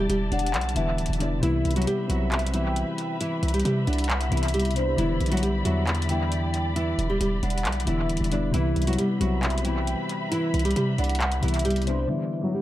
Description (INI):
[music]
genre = hip hop, trap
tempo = 135 BPM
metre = 4/4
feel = half-time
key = unclear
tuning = A4 = 440 Hz
[part]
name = nylon-string guitar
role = melody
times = 0.0-12.6 s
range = E3 to D5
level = -28 LUFS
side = right 1 dB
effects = low-pass filter, tape echo
[part]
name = soft electric-piano-like synth keys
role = accompaniment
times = 0.0-12.6 s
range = C3 to F#4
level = -30 LUFS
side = left 3 dB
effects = chorus, low-pass filter, tape echo
[part]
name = muted studio string section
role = sustained chords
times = 0.0-12.6 s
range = G3 to B5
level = -34 LUFS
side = left 2 dB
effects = low-pass filter
[part]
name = hard-hitting 808-style bass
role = bass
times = 0.0-12.1 s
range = D1 to C3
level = -26 LUFS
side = equal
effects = none
[part]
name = booming analog drum machine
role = drums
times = 0.1-12.0 s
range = handclaps, hi-hat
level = -32 LUFS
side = equal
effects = tape echo
[part]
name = warm velvety synth lead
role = second line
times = 0.3-12.1 s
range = C5 to G5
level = -34 LUFS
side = equal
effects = chorus, phaser, tape echo
[sound]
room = digital ambience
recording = echo-heavy mix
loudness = -22 LUFS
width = side -14 dB against mid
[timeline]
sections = 0.0-12.1 A section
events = none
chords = 0.0 Em7; 1.4 Cmaj7; 5.0 Em7; 8.5 Cmaj7; 12.1 Em7